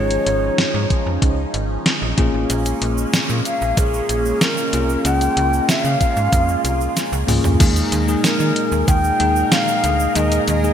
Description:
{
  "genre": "1980s-style pop",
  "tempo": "94 BPM",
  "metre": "4/4",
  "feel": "straight",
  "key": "unclear",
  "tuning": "A4 = 436 Hz",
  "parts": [
    { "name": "bright round clay ocarina", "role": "melody", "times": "0.0-10.7 s", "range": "Ab4 to G5", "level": "-21 LUFS", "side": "equal", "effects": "ping-pong delay" },
    { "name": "bell-like tine electric piano", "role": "accompaniment", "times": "0.0-10.7 s", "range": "Ab3 to Ab4", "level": "-23 LUFS", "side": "left 3 dB", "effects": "none" },
    { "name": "phased analog pad", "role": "sustained chords", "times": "0.0-10.7 s", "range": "Bb2 to Bb4", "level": "-26 LUFS", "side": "right 2 dB", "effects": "phaser, chorus" },
    { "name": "slap-like FM bass", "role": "bass", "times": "0.0-10.7 s", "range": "Ab1 to Eb3", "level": "-21 LUFS", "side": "equal", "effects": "none" },
    { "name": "clean 12-bit digital drum machine", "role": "drums", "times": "0.1-10.6 s", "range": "crash cymbal, hi-hat, kick drum, snare drum, tambourine, toms", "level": "-19 LUFS", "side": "equal", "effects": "gated reverb" },
    { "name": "tube shaker", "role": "percussion", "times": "2.5-10.7 s", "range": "none", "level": "-32 LUFS", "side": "right 8 dB", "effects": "none" }
  ],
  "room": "moderate lush hall reverb, RT60 2.2 s",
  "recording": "bright 1980s-style digital production",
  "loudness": "-15 LUFS",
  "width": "side -9 dB against mid",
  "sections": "0.0-7.6 A section; 7.6-10.7 B section",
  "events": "drum fill 7.0-7.6",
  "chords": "0.0 Db/Ab; 2.2 Bbm7; 5.1 Db6; 7.6 Ebsus4"
}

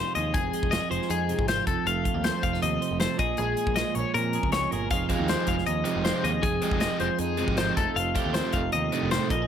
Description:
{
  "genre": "math rock and midwest emo",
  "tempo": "157 BPM",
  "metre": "4/4",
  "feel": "straight",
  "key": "F minor",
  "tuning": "A4 = 439 Hz",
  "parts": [
    { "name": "twelve-string electric guitar", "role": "accompaniment", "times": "0.0-9.5 s", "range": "F2 to C5", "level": "-30 LUFS", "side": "right 11 dB", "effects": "spring reverb" },
    { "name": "twelve-string electric guitar", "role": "arpeggios", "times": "0.0-9.5 s", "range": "Ab4 to F5", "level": "-28 LUFS", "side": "left 7 dB", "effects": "spring reverb" },
    { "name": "overdriven picked electric bass", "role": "bass", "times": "0.2-9.5 s", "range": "F1 to Bb2", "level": "-32 LUFS", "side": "equal", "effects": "none" },
    { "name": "modern studio drum kit", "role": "drums", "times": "0.2-9.4 s", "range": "hi-hat, kick drum, snare drum", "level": "-30 LUFS", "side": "equal", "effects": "none" },
    { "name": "overdriven electric guitar", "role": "riff", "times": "5.1-9.3 s", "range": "C3 to C4", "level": "-31 LUFS", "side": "right 2 dB", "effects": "none" }
  ],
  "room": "light reverb",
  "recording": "none",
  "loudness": "-24 LUFS",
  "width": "side -8 dB against mid",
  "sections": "0.0-9.5 A section",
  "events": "none",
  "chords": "0.0 Fm7; 1.7 F7; 3.2 Bbm7; 4.9 Fm7; 7.8 F7"
}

